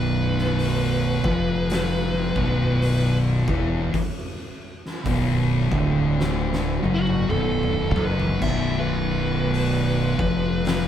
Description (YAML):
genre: stoner and doom metal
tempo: 54 BPM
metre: 4/4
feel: swing 59% on 8ths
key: unclear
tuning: A4 = 438 Hz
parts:
  - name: fuzz lead guitar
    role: melody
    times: 0.0-10.9 s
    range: F#4 to E5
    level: -28 LUFS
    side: equal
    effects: distortion
  - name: thick fuzz guitar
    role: riff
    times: 0.0-10.9 s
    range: B1 to F#3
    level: -25 LUFS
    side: left 7 dB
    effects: distortion
  - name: thick fuzz guitar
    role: riff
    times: 0.0-10.9 s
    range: B1 to F#3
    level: -26 LUFS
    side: right 5 dB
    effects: distortion
  - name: fuzz fingered electric bass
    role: bass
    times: 0.0-10.9 s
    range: B0 to F#1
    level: -26 LUFS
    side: equal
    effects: overdrive
  - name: oversized low-tuned drum kit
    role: drums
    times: 0.4-10.9 s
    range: crash cymbal, hi-hat, kick drum, snare drum, toms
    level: -29 LUFS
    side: equal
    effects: none
room: moderate studio reverb, RT60 0.7 s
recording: band playing live in one room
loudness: -20 LUFS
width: side -10 dB against mid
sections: 0.0-10.9 A section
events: lead electric guitar solo 0.0-10.9; drum fill 6.2-8.4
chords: 0.0 Bm